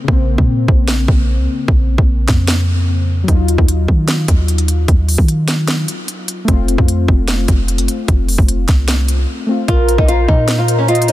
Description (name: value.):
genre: hip hop, trap.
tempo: 150 BPM.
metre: 4/4.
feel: half-time.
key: Bb harmonic minor.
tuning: A4 = 440 Hz.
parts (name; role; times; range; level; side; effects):
warbly lo-fi synth keys; accompaniment; 0.0-9.7 s; Db3 to F4; -21 LUFS; left 4 dB; chorus, low-pass filter.
clean 808-style bass; bass; 0.1-11.1 s; F1 to Eb3; -15 LUFS; equal; none.
trap drum kit; drums; 0.1-11.1 s; hi-hat, kick drum, snare drum; -15 LUFS; equal; none.
nylon-string guitar; melody; 9.7-11.1 s; Db4 to F4; -16 LUFS; left 2 dB; low-pass filter.
warm velvety synth lead; second line; 9.7-11.1 s; Bb4 to Eb5; -21 LUFS; right 5 dB; chorus, digital delay.
hollow soft pad; sustained chords; 9.7-11.1 s; F4 to Bb5; -22 LUFS; equal; ensemble chorus.
room: little or no reverb.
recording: dense, heavily limited modern master.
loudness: -12 LUFS.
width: side -15 dB against mid.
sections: 0.0-9.7 A section; 9.7-11.1 B section.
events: break 0.0-3.3, 9.3-9.7.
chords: 0.0 Bbmadd9; 3.3 Ebmadd9; 6.5 F; 9.7 Bbsus2.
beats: | 0.08 0.48 0.88 1.28 | 1.68 2.08 2.48 2.88 | 3.28 3.68 4.08 4.48 | 4.88 5.28 5.68 6.08 | 6.48 6.88 7.28 7.68 | 8.08 8.48 8.88 9.28 | 9.68 10.08 10.48 10.88.